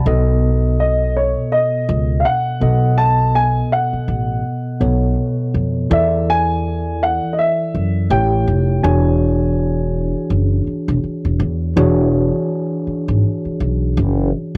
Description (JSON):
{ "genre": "lush 1970s-style soul", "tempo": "82 BPM", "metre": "4/4", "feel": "swing 58% on 16ths", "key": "unclear", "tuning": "A4 = 441 Hz", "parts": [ { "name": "tine electric piano", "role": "accompaniment", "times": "0.0-14.6 s", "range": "B2 to D#5", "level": "-22 LUFS", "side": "equal", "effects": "cassette tape" }, { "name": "upright bass", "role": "bass", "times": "0.1-14.6 s", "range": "E1 to F#2", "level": "-20 LUFS", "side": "equal", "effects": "none" }, { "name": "dark grand piano", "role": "melody", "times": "0.8-10.3 s", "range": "C#5 to A5", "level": "-21 LUFS", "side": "equal", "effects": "cassette tape, plate reverb" } ], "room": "moderate booth ambience, RT60 0.2 s", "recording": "home recording on cassette", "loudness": "-17 LUFS", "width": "mono", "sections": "0.0-11.8 A section; 11.8-14.6 B section", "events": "none", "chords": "0.1 B7; 5.9 E7sus4; 8.1 A7; 8.8 E13" }